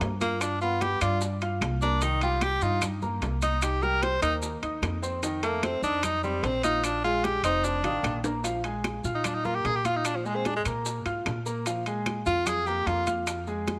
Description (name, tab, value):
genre	Afro-Cuban jazz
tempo	149 BPM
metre	4/4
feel	straight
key	Bb mixolydian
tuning	A4 = 439 Hz
part	clear concert grand piano	accompaniment	0.0-13.8 s	Eb3 to F6	-35 LUFS	equal	none
part	upright bass	bass	0.0-13.8 s	F1 to Bb2	-34 LUFS	equal	none
part	bongos	percussion	0.0-13.8 s	none	-42 LUFS	equal	none
part	congas	percussion	0.0-13.8 s	none	-41 LUFS	equal	none
part	maracas	percussion	0.0-13.8 s	none	-43 LUFS	equal	none
part	timbales	percussion	0.0-13.8 s	none	-37 LUFS	equal	none
part	bright tenor saxophone	melody	0.2-13.1 s	F3 to C5	-30 LUFS	equal	none
part	claves	percussion	0.4-13.5 s	none	-42 LUFS	equal	none
room	light reverb, small room ambience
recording	none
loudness	-28 LUFS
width	mono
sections	0.0-8.4 A section; 8.4-13.8 A section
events	tenor saxophone solo 0.0-13.8; drum fill 1.8, 7.8-8.4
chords	0.4 G7; 2.0 Cm7; 5.2 F7; 6.8 Bbsus2; 7.6 F7; 8.4 Bb5